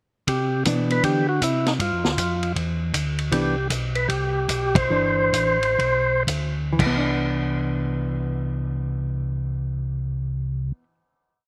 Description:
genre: soul jazz organ trio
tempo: 111-158 BPM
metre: 4/4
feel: swing 65% on 8ths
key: C major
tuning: A4 = 440 Hz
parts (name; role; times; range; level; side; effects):
- percussive tonewheel organ; melody; 0.3-6.2 s; Eb4 to C5; -25 LUFS; equal; slow rotary speaker, slapback echo
- mellow tonewheel organ; bass; 0.3-10.7 s; G1 to D3; -28 LUFS; equal; chorus vibrato, slow rotary speaker
- vintage drum kit; drums; 0.3-7.0 s; crash cymbal, hi-hat, kick drum, ride cymbal, snare drum; -29 LUFS; equal; none
- hollow-body jazz guitar; accompaniment; 0.7-10.9 s; E3 to D4; -29 LUFS; equal; none
room: little or no reverb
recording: recorded outdoors, with no room sound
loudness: -23 LUFS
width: mono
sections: 0.3-6.8 A section; 6.8-11.1 final chord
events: slowing down 3.3-6.8; band accent 4.7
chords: 0.3 Cmaj9; 1.8 G5; 3.3 Cmaj9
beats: | 0.28 0.66 1.04 1.42 | 1.80 2.18 2.56 2.94 | 3.32 3.70 4.09 4.49 | 4.90 5.33 5.79 6.27 | 6.79 7.33 7.87 8.41 | 8.96 9.50 10.04 10.58

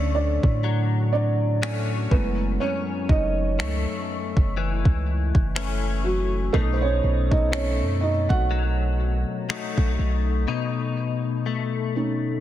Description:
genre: contemporary R&B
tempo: 61 BPM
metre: 4/4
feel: swing 58% on 16ths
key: unclear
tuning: A4 = 440 Hz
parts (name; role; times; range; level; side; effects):
- felt-muted upright piano; accompaniment; 0.0-12.4 s; F#3 to F#5; -27 LUFS; right 3 dB; none
- direct-recorded clean electric guitar; arpeggios; 0.0-12.4 s; F#2 to D#4; -28 LUFS; left 7 dB; ensemble chorus, digital delay
- warm 808-style bass; bass; 0.0-10.5 s; F#1 to A2; -24 LUFS; equal; none
- smooth R&B drum kit; drums; 0.4-10.0 s; finger snaps, kick drum; -24 LUFS; equal; vintage 12-bit sampler grit, soft clipping on snare
room: digital ambience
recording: dense, heavily limited modern master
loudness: -21 LUFS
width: side -12 dB against mid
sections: 0.0-12.4 A section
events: felt piano solo 0.0-12.4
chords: 0.0 Dmaj7; 2.1 F#m7; 6.5 B7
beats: 0.64 1.62 | 2.61 3.59 4.57 5.56 | 6.54 7.52 8.51 9.49 | 10.47 11.46

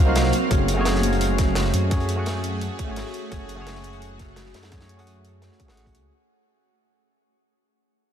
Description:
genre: liquid drum and bass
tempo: 171 BPM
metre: 4/4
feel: straight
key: unclear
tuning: A4 = 440 Hz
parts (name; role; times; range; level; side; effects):
- barky tine electric piano; accompaniment; 0.0-6.1 s; A3 to Gb5; -27 LUFS; right 1 dB; tape echo
- shimmering ambient pad; sustained chords; 0.0-6.1 s; Gb3 to F5; -28 LUFS; equal; chorus, built-in reverb, phaser
- dark detuned saw bass; bass; 0.0-6.1 s; Gb1 to Gb2; -25 LUFS; equal; none
- crunchy breakbeat drum kit; drums; 0.2-6.0 s; hi-hat, snare drum; -31 LUFS; right 1 dB; high-pass filter on hats, high-pass filter on snare, high-pass filter on room
- electronic hi-hat; drums; 0.2-6.0 s; none; -35 LUFS; equal; none
- electronic kick drum; drums; 0.5-5.9 s; none; -22 LUFS; equal; none
room: moderate huge ambient reverb, RT60 7.5 s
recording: dreamy mix soaked in reverb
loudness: -20 LUFS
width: side -9 dB against mid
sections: 0.0-6.1 A section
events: fade-out 0.0-6.1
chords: 0.3 Gbmadd9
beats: 0.16 | 0.51 0.86 1.21 1.56 | 1.91 2.26 2.61 2.96 | 3.31 3.67 4.02 4.37 | 4.72 5.07 5.42 5.77

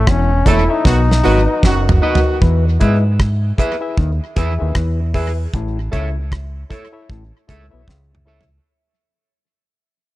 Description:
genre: roots reggae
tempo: 77 BPM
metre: 4/4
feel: swing 59% on 16ths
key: E major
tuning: A4 = 438 Hz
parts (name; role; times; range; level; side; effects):
- brilliant trombone; melody; 0.0-2.0 s; A3 to E4; -21 LUFS; left 2 dB; dub echo
- deep dub fingered electric bass; bass; 0.0-8.6 s; E1 to G#2; -16 LUFS; equal; none
- overdriven clav; riff; 0.1-8.1 s; E2 to G#3; -26 LUFS; left 4 dB; phaser
- damped 70s drum kit; drums; 0.1-8.6 s; hi-hat, kick drum, rim click, snare drum, toms; -16 LUFS; equal; vintage 12-bit sampler grit
- electric guitar at the edge of break-up; accompaniment; 0.5-8.4 s; F#4 to E5; -24 LUFS; right 4 dB; lush chorus, dub echo
- barky reed electric piano; stabs; 0.5-8.5 s; D#4 to E5; -25 LUFS; left 4 dB; none
- mellow horn section; second line; 0.8-2.4 s; D#3 to F#4; -22 LUFS; right 2 dB; dub echo
room: light reverb, small room ambience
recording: echo-heavy mix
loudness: -13 LUFS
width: side -17 dB against mid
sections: 0.0-2.4 A section; 2.4-8.7 B section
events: band accent 0.0-2.4; drum fill 0.9-2.4, 7.9-8.7; fade-out 2.4-8.7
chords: 0.0 A; 0.9 B; 2.4 E; 5.5 A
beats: 0.07 0.85 1.63 | 2.41 3.19 3.97 4.75 | 5.53 6.31 7.09 7.87

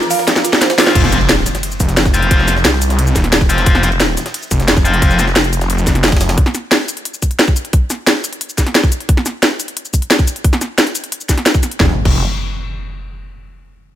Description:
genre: dark technical drum and bass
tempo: 177 BPM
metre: 4/4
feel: straight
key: unclear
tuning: A4 = 440 Hz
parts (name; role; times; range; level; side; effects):
- dark chamber string section; sustained chords; 0.0-0.9 s; F3 to Bb4; -26 LUFS; left 4 dB; sidechain pumping
- drum and bass drum kit; drums; 0.0-12.1 s; cabasa, crash cymbal, hi-hat, ride cymbal, snare drum; -15 LUFS; equal; none
- dark detuned synth bell; arpeggios; 0.1-0.8 s; F4 to F5; -19 LUFS; right 6 dB; chorus, sidechain pumping, dub echo
- jungle sampler-style drum kit; drums; 0.1-6.4 s; ride cymbal, snare drum; -24 LUFS; equal; none
- distorted electric guitar; stabs; 0.8-5.2 s; F3 to F4; -19 LUFS; left 3 dB; overdrive, dub echo
- snarling distorted saw bass; bass; 1.0-6.4, 11.8-12.2 s; Eb1 to C2; -16 LUFS; equal; distortion, overdrive, sidechain pumping
- electronic kick drum; drums; 1.0-12.1 s; none; -13 LUFS; equal; none
- impact; sound effects; 1.0-2.3, 11.8-13.2 s; none; -21 LUFS; equal; none
room: little or no reverb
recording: none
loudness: -11 LUFS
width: side -12 dB against mid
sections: 1.0-11.8 A section; 11.8-13.2 B section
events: drum fill 0.3-1.0; impact 1.0-2.3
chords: 0.0 F5; 11.8 N.C.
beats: 0.28 0.61 | 0.95 1.29 1.63 1.97 | 2.31 2.65 2.99 3.33 | 3.67 4.00 4.34 4.68 | 5.02 5.36 5.70 6.04 | 6.38 6.72 7.05 7.39 | 7.73 8.07 8.41 8.75 | 9.09 9.43 9.77 10.11 | 10.45 10.78 11.12 11.46 | 11.80 12.14 12.48 12.82

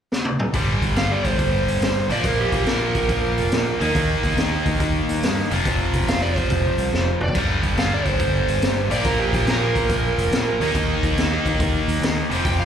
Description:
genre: blues rock power trio and southern rock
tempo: 141 BPM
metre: 4/4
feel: swing 67% on 8ths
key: G minor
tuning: A4 = 440 Hz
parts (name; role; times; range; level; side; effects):
- raw garage drum kit; drums; 0.1-12.6 s; crash cymbal, hi-hat, kick drum, snare drum, toms; -24 LUFS; equal; none
- biting overdriven guitar; riff; 0.5-12.7 s; F2 to Eb4; -22 LUFS; equal; slapback echo
- growling fingered electric bass; bass; 0.5-12.6 s; F1 to G2; -25 LUFS; equal; overdrive
- overdriven slide guitar; melody; 1.0-12.7 s; G4 to G5; -25 LUFS; right 3 dB; slapback echo
room: light reverb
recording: live gig heard through the venue's PA, club reverb, lossy compression artefacts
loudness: -18 LUFS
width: side -8 dB against mid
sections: 0.5-12.7 A section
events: drum fill 0.1-0.5, 6.9-7.4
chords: 0.0 N.C.; 0.5 G5; 2.0 Bb5; 3.7 Eb5; 5.4 F5; 7.4 G5; 8.8 Bb5; 10.5 Eb5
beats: 0.11 | 0.54 0.96 1.39 1.82 | 2.25 2.67 3.10 3.52 | 3.95 4.37 4.80 5.22 | 5.65 6.08 6.50 6.92 | 7.35 7.78 8.20 8.63 | 9.05 9.48 9.90 10.33 | 10.75 11.18 11.61 12.03 | 12.46

